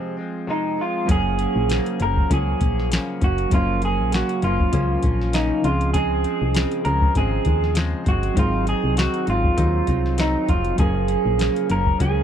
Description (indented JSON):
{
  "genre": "indie pop, bedroom pop",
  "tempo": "99 BPM",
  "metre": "4/4",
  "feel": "swing 55% on 16ths",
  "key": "unclear",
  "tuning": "A4 = 441 Hz",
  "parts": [
    { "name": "electric guitar through a small old amp", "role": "melody", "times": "0.0-12.2 s", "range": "Eb4 to Bb4", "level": "-23 LUFS", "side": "right 2 dB", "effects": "lush chorus" },
    { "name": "direct-recorded clean electric guitar", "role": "accompaniment", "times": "0.0-12.2 s", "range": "F2 to Eb4", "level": "-31 LUFS", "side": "left 6 dB", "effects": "lush chorus, warbly pitch drift" },
    { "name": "mellow tine electric piano", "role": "accompaniment", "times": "0.0-12.2 s", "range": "F3 to Gb5", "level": "-27 LUFS", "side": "right 4 dB", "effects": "none" },
    { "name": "solid FM bass", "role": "bass", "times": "1.1-12.2 s", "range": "F1 to Eb2", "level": "-23 LUFS", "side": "left 1 dB", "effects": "none" },
    { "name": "soft vintage rhythm box", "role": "drums", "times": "1.1-12.2 s", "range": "hi-hat, kick drum, snare drum", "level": "-22 LUFS", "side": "left 1 dB", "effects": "none" }
  ],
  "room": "little or no reverb",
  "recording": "dry, close 1970s-style studio recording",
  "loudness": "-18 LUFS",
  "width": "side -9 dB against mid",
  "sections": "0.0-1.1 A section; 1.1-12.2 B section",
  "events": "break 0.0-1.1",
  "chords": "0.0 Fm; 1.1 Gbmaj7; 5.6 Dbmaj7; 8.4 Ab7; 10.8 Gbmaj7"
}